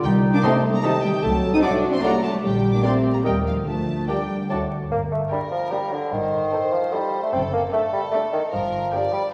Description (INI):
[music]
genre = cinematic, playful, whimsical film cue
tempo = 149 BPM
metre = 3/4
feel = straight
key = G minor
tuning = A4 = 440 Hz
[part]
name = clear studio violin section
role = melody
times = 0.0-9.3 s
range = A4 to Eb6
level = -33 LUFS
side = equal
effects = none
[part]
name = mellow clarinet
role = second line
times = 0.0-4.7 s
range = D4 to Bb4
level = -30 LUFS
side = equal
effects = none
[part]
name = mellow French horn section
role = sustained chords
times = 0.0-4.5 s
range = D3 to C4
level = -30 LUFS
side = equal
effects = none
[part]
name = dark studio cello section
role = bass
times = 0.0-8.9 s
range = F#2 to Eb4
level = -27 LUFS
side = equal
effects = none
[part]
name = warm studio double bass section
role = bass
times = 0.0-8.9 s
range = F#1 to Eb2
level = -29 LUFS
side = equal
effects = none
[part]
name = bright small flute group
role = second line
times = 0.4-4.6 s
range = F#5 to A5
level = -36 LUFS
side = equal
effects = none
[part]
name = rich studio violin section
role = second line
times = 0.4-9.2 s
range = A4 to A5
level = -37 LUFS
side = equal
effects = none
[part]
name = warm oboe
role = second line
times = 0.4-4.7 s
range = D5 to Eb5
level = -35 LUFS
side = equal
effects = none
[part]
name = dark studio viola section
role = accompaniment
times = 0.4-9.2 s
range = D4 to A4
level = -34 LUFS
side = equal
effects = none
[part]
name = warm bassoon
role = accompaniment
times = 0.5-9.2 s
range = A2 to C4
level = -27 LUFS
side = equal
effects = none
[sound]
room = wet scoring stage reverb, RT60 1.9 s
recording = heard from further back in the room, vinyl crackle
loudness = -22 LUFS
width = mono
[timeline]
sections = 0.0-4.9 A section; 4.9-9.3 B section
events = none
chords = 0.0 Am7b5/C; 1.2 D7/C; 2.4 Gm/Bb; 3.2 Eb; 3.7 Gm/D; 4.5 D; 4.9 Gm; 6.1 Am7b5/G; 7.3 D/F#; 8.5 Gm